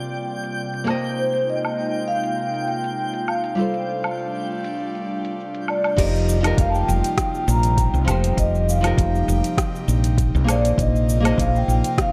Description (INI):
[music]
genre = sunset chillout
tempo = 100 BPM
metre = 4/4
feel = swing 53% on 16ths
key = F mixolydian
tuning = A4 = 440 Hz
[part]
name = nylon-string guitar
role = accompaniment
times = 0.0-12.1 s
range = F3 to F5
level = -29 LUFS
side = equal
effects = vintage 12-bit sampler grit, delay
[part]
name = airy breathy pad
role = sustained chords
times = 0.0-12.1 s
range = C3 to D5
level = -31 LUFS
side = equal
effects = chorus
[part]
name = twinkling granular texture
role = texture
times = 0.0-6.0 s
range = G5 to G6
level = -37 LUFS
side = equal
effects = built-in reverb
[part]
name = smooth R&B drum kit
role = drums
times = 0.1-12.1 s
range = crash cymbal, hi-hat, rim click, shaker, woodblock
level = -31 LUFS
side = equal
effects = low-pass filter on toms, low-pass filter on perc, low-pass filter on hats, low-pass filter on cymbals, low-pass filter on snare, low-pass filter on room
[part]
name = vibraphone with medium mallets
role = melody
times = 1.2-12.1 s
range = C5 to Bb5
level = -27 LUFS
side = equal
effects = vintage 12-bit sampler grit, delay
[part]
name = woody fretless electric bass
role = bass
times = 6.0-11.8 s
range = F1 to C2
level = -22 LUFS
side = equal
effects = tube saturation
[part]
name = electronic kick drum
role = drums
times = 6.0-12.1 s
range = none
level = -25 LUFS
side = equal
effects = none
[sound]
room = light reverb, digital ambience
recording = dark, warm production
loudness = -21 LUFS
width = mono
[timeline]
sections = 0.0-6.0 A section; 6.0-12.1 B section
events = filter sweep on analog synth pad 0.0-6.0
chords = 0.0 F9sus4; 0.9 Bb9sus4; 3.6 G9sus4; 6.0 F9sus4; 10.5 Bb9sus4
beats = 0.58 | 1.18 1.78 2.38 2.98 | 3.58 4.18 4.78 5.38 | 5.98 6.58 7.18 7.78 | 8.38 8.98 9.58 10.18 | 10.78 11.38 11.98